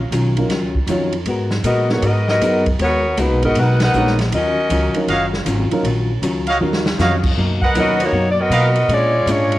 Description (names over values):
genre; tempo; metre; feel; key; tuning
jazz, big band swing; 157 BPM; 4/4; swing 65% on 8ths; Eb minor; A4 = 440 Hz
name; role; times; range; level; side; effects
upright bass; bass; 0.0-9.6 s; Gb1 to B2; -20 LUFS; equal; none
hollow-body jazz guitar; accompaniment; 0.1-9.6 s; Bb2 to Bb4; -23 LUFS; left 2 dB; cassette tape
swinging big-band drum kit; drums; 0.1-9.6 s; crash cymbal, hi-hat, kick drum, ride cymbal, snare drum; -24 LUFS; right 1 dB; none
dark upright piano; accompaniment; 0.4-8.0 s; Gb3 to Db5; -23 LUFS; right 1 dB; cassette tape
clear saxophone section; melody; 1.7-5.1, 7.8-9.6 s; Gb3 to Gb5; -17 LUFS; left 1 dB; cassette tape
clear trumpet section; stabs; 5.1-8.7 s; Gb4 to F#5; -21 LUFS; right 2 dB; cassette tape
room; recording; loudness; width
light reverb, small room ambience; home recording on cassette; -14 LUFS; side -15 dB against mid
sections
0.0-9.6 A section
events
band accent 3.7; drum fill 6.6-7.0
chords
0.0 Ebm9; 1.3 Abm9; 4.3 Ebm9; 7.4 Bmaj7; 8.9 Bb7#9